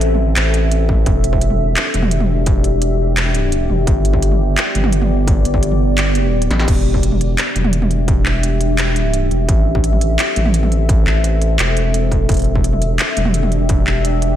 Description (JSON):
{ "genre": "half-time drum and bass", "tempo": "171 BPM", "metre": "4/4", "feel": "half-time", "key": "E minor", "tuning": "A4 = 440 Hz", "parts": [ { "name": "deep dark ambient pad", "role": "sustained chords", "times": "0.0-14.4 s", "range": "B3 to E5", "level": "-20 LUFS", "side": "left 1 dB", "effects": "chorus, built-in reverb, sidechain pumping" }, { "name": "saturated sub bass", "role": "bass", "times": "0.0-14.4 s", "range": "E1 to A1", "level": "-16 LUFS", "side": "equal", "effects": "tube saturation" }, { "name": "industrial drum kit", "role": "drums", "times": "0.0-14.3 s", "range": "crash cymbal, handclaps, hi-hat, snare drum, toms", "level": "-20 LUFS", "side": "right 1 dB", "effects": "none" }, { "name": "electronic kick drum", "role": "drums", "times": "0.9-13.8 s", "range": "none", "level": "-17 LUFS", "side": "equal", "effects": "distortion" } ], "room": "light reverb", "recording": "none", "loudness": "-13 LUFS", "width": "side -11 dB against mid", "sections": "0.0-6.7 A section; 6.7-14.4 A section", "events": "drop 0.0-6.7, 6.7-14.4; kick drops out 6.0-6.7; drum fill 6.5", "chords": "0.0 Am; 1.1 Em7; 3.9 G; 6.7 Em7; 9.5 Am; 12.3 Em7" }